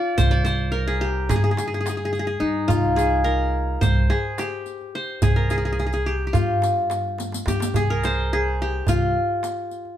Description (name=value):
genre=Turkish makam ensemble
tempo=214 BPM (eighths)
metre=9/8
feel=straight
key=C makam ussak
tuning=A4 = 441 Hz
part: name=qanun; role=melody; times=0.0-10.0 s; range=Eb4 to D5-30c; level=-23 LUFS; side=left 1 dB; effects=none
part: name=upright bass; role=bass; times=0.2-9.1 s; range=C2 to G2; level=-24 LUFS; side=right 1 dB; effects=none
part: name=darbuka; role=percussion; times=0.2-9.9 s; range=none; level=-24 LUFS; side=right 1 dB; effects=none
part: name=riq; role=percussion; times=0.2-9.8 s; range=none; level=-33 LUFS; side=right 1 dB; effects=none
room=moderate studio reverb, RT60 0.7 s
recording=band playing live in one room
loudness=-20 LUFS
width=side -11 dB against mid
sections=0.0-10.0 A section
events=drum fill 7.2-7.7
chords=none